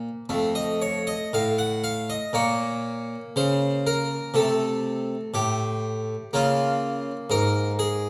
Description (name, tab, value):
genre	classical, baroque-style suite movement for harpsichord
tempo	58-64 BPM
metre	4/4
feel	rubato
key	unclear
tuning	A4 = 440 Hz
part	harpsichord	solo	0.0-8.1 s	F2 to Gb5	-25 LUFS	equal	none
room	moderate recital hall reverb, RT60 1.6 s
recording	none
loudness	-25 LUFS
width	mono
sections	0.0-8.1 A section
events	none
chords	0.3 F; 2.3 Bbm; 4.4 Am7; 6.3 Bbm